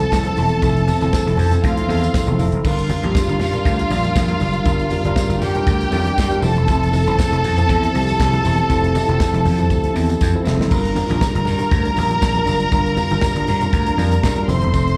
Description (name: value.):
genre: disco.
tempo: 119 BPM.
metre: 4/4.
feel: straight.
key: G dorian.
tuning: A4 = 439 Hz.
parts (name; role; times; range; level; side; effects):
clear studio string section; second line; 0.0-15.0 s; F4 to C6; -24 LUFS; equal; none.
clean electric guitar; accompaniment; 0.0-14.9 s; C4 to Bb4; -30 LUFS; equal; none.
mellow tine electric piano; accompaniment; 0.0-15.0 s; F3 to Bb4; -25 LUFS; equal; slapback echo.
vintage slap bass; bass; 0.0-15.0 s; E1 to G2; -22 LUFS; equal; none.
modern studio drum kit; drums; 0.0-15.0 s; crash cymbal, handclaps, hi-hat, kick drum, snare drum; -24 LUFS; equal; none.
congas; percussion; 0.1-14.6 s; none; -29 LUFS; equal; none.
tambourine; percussion; 0.1-14.9 s; none; -40 LUFS; equal; none.
room: studio ambience.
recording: live gig heard through the venue's PA, club reverb.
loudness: -18 LUFS.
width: mono.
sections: 0.0-2.6 A section; 2.6-15.0 A section.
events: drum fill 10.2-10.7.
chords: 0.0 Fmaj7; 2.6 Gm7; 6.4 Fmaj7; 10.7 Gm7.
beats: 0.12 | 0.63 1.13 1.64 2.14 | 2.64 3.15 3.65 4.16 | 4.66 5.16 5.67 6.17 | 6.68 7.18 7.68 8.19 | 8.69 9.20 9.70 10.20 | 10.71 11.21 11.72 12.22 | 12.72 13.23 13.73 14.23 | 14.74.